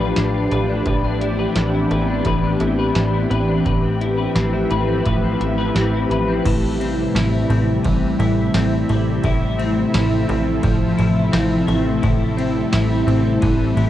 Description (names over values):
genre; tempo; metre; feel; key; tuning
dream pop; 86 BPM; 4/4; straight; A minor; A4 = 437 Hz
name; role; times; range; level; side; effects
ethereal airy pad; sustained chords; 0.0-13.9 s; C3 to B4; -21 LUFS; right 1 dB; ensemble chorus, built-in reverb, cassette tape
electric guitar at the edge of break-up; arpeggios; 0.0-13.9 s; A2 to B4; -22 LUFS; left 6 dB; ensemble chorus, cassette tape, tape echo
plucky analog bass; bass; 0.0-13.9 s; A1; -21 LUFS; right 1 dB; none
booming analog drum machine; drums; 0.2-13.9 s; crash cymbal, hi-hat, kick drum, ride cymbal, snare drum, tambourine; -24 LUFS; right 1 dB; cassette tape
room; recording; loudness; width
moderate booth ambience, RT60 0.2 s; home recording on cassette; -16 LUFS; side -12 dB against mid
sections
0.0-6.5 A section; 6.5-13.9 B section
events
none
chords
0.0 G9/A; 0.9 Cmaj9/A; 3.7 Fmaj9#11/A; 6.5 Am7; 9.2 Fmaj7/A; 12.0 Am7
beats
0.17 | 0.87 1.57 2.26 2.96 | 3.66 4.36 5.05 5.75 | 6.45 7.15 7.84 8.54 | 9.24 9.94 10.64 11.33 | 12.03 12.73 13.43